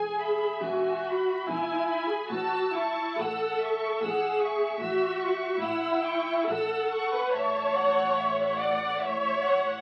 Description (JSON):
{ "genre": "classical, slow romantic movement for string orchestra", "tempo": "65-76 BPM", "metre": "3/4", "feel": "rubato", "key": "unclear", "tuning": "A4 = 443 Hz", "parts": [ { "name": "warm studio violin section", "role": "melody", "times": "0.0-9.8 s", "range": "E5 to E6", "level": "-39 LUFS", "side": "equal", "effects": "none" }, { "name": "rich studio violin section", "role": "second line", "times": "0.0-9.8 s", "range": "E5 to A5", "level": "-36 LUFS", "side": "equal", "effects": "none" }, { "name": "dark studio viola section", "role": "accompaniment", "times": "0.0-9.8 s", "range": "E4 to D5", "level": "-29 LUFS", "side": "equal", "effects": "none" }, { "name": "clear studio double bass section", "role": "bass", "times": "0.0-9.8 s", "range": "E1 to A1", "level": "-51 LUFS", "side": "equal", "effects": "none" }, { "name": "rich studio cello section", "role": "bass", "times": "0.0-9.8 s", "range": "E2 to A2", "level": "-46 LUFS", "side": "equal", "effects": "none" } ], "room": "moderate large studio reverb, RT60 0.9 s", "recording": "very old 78 rpm record, vinyl crackle", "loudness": "-28 LUFS", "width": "mono", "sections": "0.0-9.8 A section", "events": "none", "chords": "0.0 E; 2.3 A" }